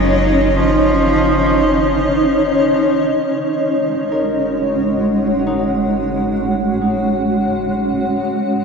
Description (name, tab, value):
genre	ambient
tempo	67 BPM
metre	3/4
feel	straight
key	F# major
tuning	A4 = 440 Hz
part	bright cello	melody	0.0-2.3 s	E#3 to F#3	-21 LUFS	equal	ping-pong delay
part	granular cloud pad	sustained chords	0.0-8.6 s	G#3 to F#5	-14 LUFS	equal	built-in reverb
part	deep rumbling drone	bass	0.0-8.6 s	F#1	-25 LUFS	equal	built-in reverb, phaser
part	warm studio violin section	texture	0.0-3.2 s	G#5	-40 LUFS	equal	none
part	concert harp	arpeggios	1.4-8.2 s	D#4 to C#5	-32 LUFS	left 2 dB	ping-pong delay
room	wet cathedral reverb, RT60 5.4 s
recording	dreamy mix soaked in reverb, cassette tape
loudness	-14 LUFS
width	side -5 dB against mid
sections	0.0-3.2 A section; 3.2-8.6 B section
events	none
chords	0.0 A#m/F# (rootless); 3.2 F#sus2